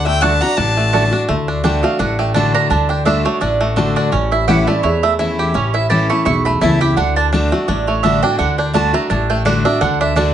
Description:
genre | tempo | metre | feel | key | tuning
bluegrass | 169 BPM | 4/4 | swing 56% on 8ths | D major | A4 = 440 Hz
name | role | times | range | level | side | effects
clear fiddle | melody | 0.0-1.2 s | G5 to Bb5 | -19 LUFS | left 2 dB | none
lap resonator guitar | second line | 0.0-1.2 s | E5 to F#5 | -22 LUFS | left 4 dB | none
picked steel-string acoustic guitar | accompaniment | 0.0-10.3 s | E2 to F#4 | -18 LUFS | left 2 dB | none
bluegrass banjo | arpeggios | 0.0-10.3 s | A3 to G4 | -20 LUFS | right 1 dB | none
upright bass | bass | 0.0-10.3 s | A1 to E2 | -21 LUFS | equal | none
mandolin | stabs | 0.2-10.3 s | A3 to C#6 | -19 LUFS | right 8 dB | none
room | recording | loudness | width
moderate small room reverb, RT60 0.6 s | nothing above 10.5 kHz | -13 LUFS | side -10 dB against mid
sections
0.0-1.3 A section; 1.3-10.3 B section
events
mandolin solo 1.3-10.3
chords
0.0 D; 4.1 A; 7.0 D

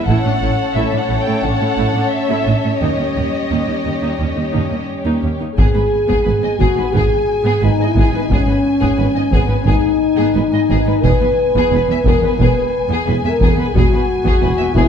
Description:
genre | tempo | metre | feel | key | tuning
cinematic, epic orchestral film score | 88 BPM | 4/4 | straight | G# minor from 5.6 s | A4 = 440 Hz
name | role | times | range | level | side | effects
warm symphonic violin section | melody | 0.0-14.9 s | D#5 to G#5 | -26 LUFS | left 4 dB | none
rich symphonic violin section | second line | 0.0-14.9 s | G4 to E5 | -24 LUFS | left 3 dB | none
warm French horn section | sustained chords | 0.0-14.9 s | G3 to B4 | -18 LUFS | left 2 dB | none
warm symphonic viola section | accompaniment | 0.1-14.9 s | A3 to E4 | -25 LUFS | right 1 dB | none
rich symphonic cello section | bass | 0.1-14.8 s | D#2 to A2 | -22 LUFS | right 3 dB | none
rich symphonic double bass section | bass | 0.1-14.8 s | E1 to D#2 | -22 LUFS | right 3 dB | none
taiko ensemble | drums | 0.1-1.4, 5.6-14.9 s | none | -18 LUFS | equal | none
dark tuba | bass | 5.6-14.8 s | E1 to G#1 | -23 LUFS | right 4 dB | none
room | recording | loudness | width
moderate scoring stage reverb, RT60 1.8 s | dark, warm production | -13 LUFS | side -8 dB against mid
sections
0.0-5.6 A section; 5.6-14.9 B section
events
none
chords
0.1 A; 2.8 D#7; 5.6 G#m; 11.0 E

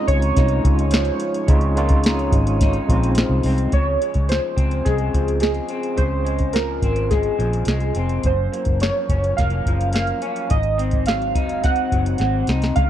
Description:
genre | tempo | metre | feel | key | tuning
indie pop, bedroom pop | 106 BPM | 4/4 | straight | Db major | A4 = 441 Hz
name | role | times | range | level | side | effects
warbly lo-fi synth keys | melody | 0.0-12.9 s | Ab4 to Gb5 | -24 LUFS | right 3 dB | tremolo, wide subtle chorus, slapback echo
electric guitar through a small old amp | accompaniment | 0.0-12.9 s | Gb2 to Eb4 | -26 LUFS | left 4 dB | lush chorus, vibrato effect
overdriven tine electric piano | accompaniment | 0.0-3.8 s | Ab3 to F4 | -24 LUFS | right 3 dB | fast tremolo, cassette tape
vintage muted fingered electric bass | bass | 0.1-12.9 s | F1 to Db2 | -21 LUFS | equal | none
soft vintage rhythm box | drums | 0.1-12.9 s | hi-hat, kick drum, snare drum | -20 LUFS | equal | none
room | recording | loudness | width
digital ambience | dry, close 1970s-style studio recording | -17 LUFS | side -11 dB against mid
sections
0.0-3.7 A section; 3.7-12.9 B section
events
drum fill 12.2-12.8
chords
0.0 Dbmaj9; 3.7 Dbmaj7; 8.2 Gbmaj7; 10.5 Ab7

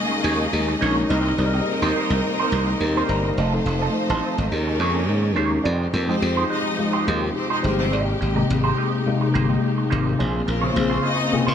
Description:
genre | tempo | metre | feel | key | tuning
disco | 105 BPM | 4/4 | straight | unclear | A4 = 439 Hz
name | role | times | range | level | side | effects
clear studio string section | second line | 0.0-11.5 s | Eb3 to Eb5 | -26 LUFS | equal | none
tine electric piano | accompaniment | 0.0-11.5 s | C3 to F5 | -24 LUFS | left 2 dB | overdrive, phaser
warm symphonic string section | sustained chords | 0.0-11.5 s | C3 to G4 | -28 LUFS | left 2 dB | none
semi-hollow electric guitar | accompaniment | 0.1-11.5 s | Ab3 to Eb5 | -27 LUFS | right 5 dB | wah, spring reverb
glassy slap bass | bass | 0.2-11.5 s | F1 to Bb2 | -23 LUFS | right 1 dB | none
room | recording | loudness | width
light reverb | none | -19 LUFS | side -8 dB against mid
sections
0.0-5.6 A section; 5.6-11.5 B section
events
tine electric piano fill 0.0-1.1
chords
0.0 Eb7sus4; 1.1 Cm7; 3.4 F7; 4.5 Eb7sus4; 5.6 Fm9; 7.9 Abmaj9; 10.2 Bbm9

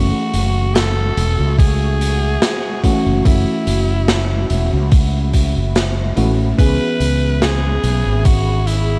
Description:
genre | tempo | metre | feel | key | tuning
vaporwave | 72 BPM | 4/4 | swing 54% on 16ths | F# minor | A4 = 440 Hz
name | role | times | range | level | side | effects
raspy alto saxophone | melody | 0.0-9.0 s | E4 to B4 | -26 LUFS | equal | tape echo
FM electric piano with soft pad layer | accompaniment | 0.0-9.0 s | E3 to G#4 | -24 LUFS | equal | subtle chorus
warbly tape-like pad | sustained chords | 0.0-9.0 s | F#4 to C#6 | -32 LUFS | equal | chorus, built-in reverb, phaser
mellow fretless electric bass | bass | 0.0-9.0 s | E1 to C#2 | -19 LUFS | equal | tube saturation
raw garage drum kit | drums | 0.3-8.9 s | hi-hat, snare drum | -25 LUFS | equal | none
electronic kick drum | drums | 1.6-8.4 s | none | -15 LUFS | equal | overdrive
room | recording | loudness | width
studio ambience | none | -16 LUFS | mono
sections
0.0-9.0 A section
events
none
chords
0.0 F#m7; 6.6 C#m7

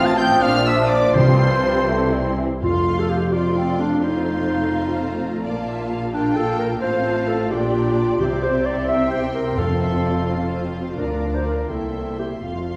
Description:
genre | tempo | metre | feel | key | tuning
classical, dramatic, fast romantic movement for symphony orchestra | 80-88 BPM (dotted quarters) | 6/8 | rubato | F major | A4 = 441 Hz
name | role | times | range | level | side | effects
warm symphonic violin section | melody | 0.0-12.8 s | C5 to A6 | -33 LUFS | equal | none
dark clarinet | second line | 0.0-12.8 s | C4 to E5 | -26 LUFS | equal | none
mellow hollow silver concert flute | second line | 0.0-2.4 s | C5 to A5 | -28 LUFS | equal | none
warm oboe | second line | 0.0-2.4 s | C5 to A5 | -27 LUFS | equal | none
warm symphonic violin section | second line | 0.0-12.8 s | C5 to C6 | -33 LUFS | equal | none
mellow bassoon | accompaniment | 0.0-2.5 s | E3 to A3 | -25 LUFS | equal | none
warm symphonic viola section | accompaniment | 0.0-12.8 s | A3 to G4 | -30 LUFS | equal | none
clear trombone section | sustained chords | 0.0-2.4 s | G2 to G3 | -28 LUFS | equal | none
mellow French horn section | sustained chords | 0.0-2.4 s | C4 to F4 | -32 LUFS | equal | none
dark symphonic cello section | bass | 0.0-12.8 s | C2 to C3 | -29 LUFS | equal | none
warm chamber double bass section | bass | 0.0-12.8 s | F1 to D2 | -30 LUFS | equal | none
timpani | percussion | 1.2-3.3, 8.2-10.2 s | F2 to C3 | -26 LUFS | equal | none
room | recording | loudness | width
wet recital hall reverb, RT60 1.4 s | heard from further back in the room | -20 LUFS | mono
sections
0.0-2.6 A section; 2.6-12.8 B section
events
none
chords
0.4 Bb; 1.2 Csus4; 1.9 C; 2.6 F; 5.4 Bb5; 6.8 F/A; 7.5 Gm7/Bb; 8.2 C; 9.6 F; 11.0 Bb/D; 11.7 C7

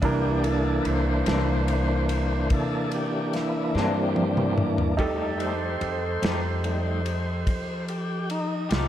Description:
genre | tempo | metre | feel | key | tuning
slow blues | 48 BPM (dotted quarters) | 12/8 | straight | C mixolydian | A4 = 440 Hz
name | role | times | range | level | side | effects
clear upright piano | accompaniment | 0.0-8.9 s | D4 to Bb4 | -32 LUFS | right 4 dB | slapback echo
tonewheel organ | sustained chords | 0.0-8.9 s | E3 to C5 | -26 LUFS | equal | slow rotary speaker, overdrive
upright bass | bass | 0.0-8.9 s | C2 to F3 | -28 LUFS | equal | none
warm soul drum kit | drums | 0.0-8.9 s | kick drum, ride cymbal, snare drum, toms | -30 LUFS | equal | none
electric guitar through a small old amp | accompaniment | 1.3-8.9 s | C3 to G4 | -34 LUFS | left 4 dB | tremolo, slapback echo
room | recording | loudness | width
moderate lush hall reverb, RT60 1.7 s, small room ambience | big arena sound | -23 LUFS | side -11 dB against mid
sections
0.0-8.9 A section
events
tonewheel organ solo 0.0-8.9; drum fill 3.7-5.0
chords
0.0 C9; 5.0 F9

